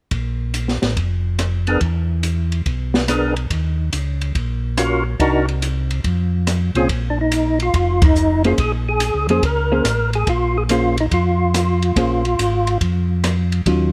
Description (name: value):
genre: soul jazz organ trio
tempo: 142 BPM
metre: 4/4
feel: swing 67% on 8ths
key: Bb minor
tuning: A4 = 444 Hz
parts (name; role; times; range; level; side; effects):
- tonewheel organ; bass; 0.1-13.9 s; F1 to F2; -22 LUFS; equal; chorus vibrato
- open jazz drum kit; drums; 0.1-13.8 s; hi-hat, kick drum, ride cymbal, rim click, snare drum; -23 LUFS; equal; none
- percussive tonewheel organ; melody; 1.7-12.8 s; Bb2 to Bb4; -22 LUFS; equal; slow rotary speaker, overdrive, chorus vibrato, plate reverb
- hollow-body jazz guitar; accompaniment; 8.4-13.9 s; Eb3 to C5; -21 LUFS; equal; none
room: light reverb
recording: none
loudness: -19 LUFS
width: mono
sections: 0.1-6.9 A section; 6.9-13.9 B section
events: band accent 7.9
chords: 0.1 Bb5; 1.8 E7#11; 3.5 Ebm7; 5.2 Cm7b5; 6.0 F5; 6.9 Bbm9